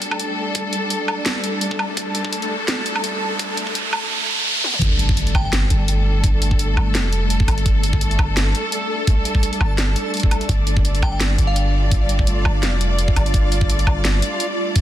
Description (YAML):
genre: half-time drum and bass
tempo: 169 BPM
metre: 4/4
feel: swing 55% on 16ths, half-time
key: unclear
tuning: A4 = 440 Hz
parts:
  - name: rich studio string section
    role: sustained chords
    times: 0.0-14.8 s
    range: G3 to D5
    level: -25 LUFS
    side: left 1 dB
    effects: sidechain pumping
  - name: drum and bass drum kit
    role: drums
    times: 0.0-14.8 s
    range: hi-hat, snare drum, toms, woodblock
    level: -24 LUFS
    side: equal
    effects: none
  - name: riser and impact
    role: sound effects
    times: 1.9-6.2 s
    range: none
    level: -25 LUFS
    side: right 1 dB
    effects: none
  - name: backwards swelling texture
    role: texture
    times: 0.1-14.8 s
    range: A3 to A5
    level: -29 LUFS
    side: equal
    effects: built-in reverb
  - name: electronic kick drum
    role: drums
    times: 0.6-14.8 s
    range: none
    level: -19 LUFS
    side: equal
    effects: high-pass filter on kick, high-pass filter on room
  - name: long sustained 808-style bass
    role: bass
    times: 4.8-14.2 s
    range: F1 to G1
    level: -19 LUFS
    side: equal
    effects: tube saturation
  - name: glassy synth bell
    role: melody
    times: 5.4-5.5, 11.0-11.7 s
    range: F5 to G5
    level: -32 LUFS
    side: left 2 dB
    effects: chorus, ping-pong delay
room: light reverb, digital ambience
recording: dense, heavily limited modern master, high-pass filter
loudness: -17 LUFS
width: side -12 dB against mid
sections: 0.0-4.8 A section; 4.8-14.8 B section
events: build-up 0.0-4.8; filter sweep 0.0-4.8; riser 1.9-4.8; drum fill 4.6; drop 4.8-14.8; impact 4.8-6.2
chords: 0.0 Gsus2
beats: 0.20 | 0.56 0.91 1.27 1.62 | 1.98 2.33 2.69 3.04 | 3.40 3.75 4.11 4.46 | 4.82 5.17 5.53 5.88 | 6.24 6.59 6.95 7.30 | 7.66 8.01 8.37 8.72 | 9.08 9.43 9.79 10.14 | 10.50 10.85 11.21 11.56 | 11.92 12.27 12.63 12.98 | 13.34 13.69 14.05 14.40 | 14.76